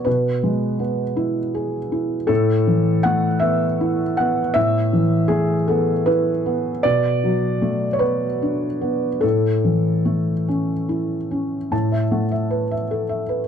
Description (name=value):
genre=neoclassical minimalist piano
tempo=48-54 BPM (dotted quarters)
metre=6/8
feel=rubato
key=A major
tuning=A4 = 440 Hz
part: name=felt-muted upright piano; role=solo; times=0.0-13.5 s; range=A2 to A5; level=-18 LUFS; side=equal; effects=none
room=light reverb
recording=dark, warm production, nothing above 10.3 kHz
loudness=-18 LUFS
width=side -8 dB against mid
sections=0.0-11.7 A section; 11.7-13.5 B section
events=none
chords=0.1 E/B; 2.3 Asus2; 6.8 Bm7; 9.2 A; 11.7 Asus2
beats=| 0.06 1.17 | 2.30 3.42 | 4.56 5.69 | 6.85 8.02 | 9.23 10.48 | 11.72 12.90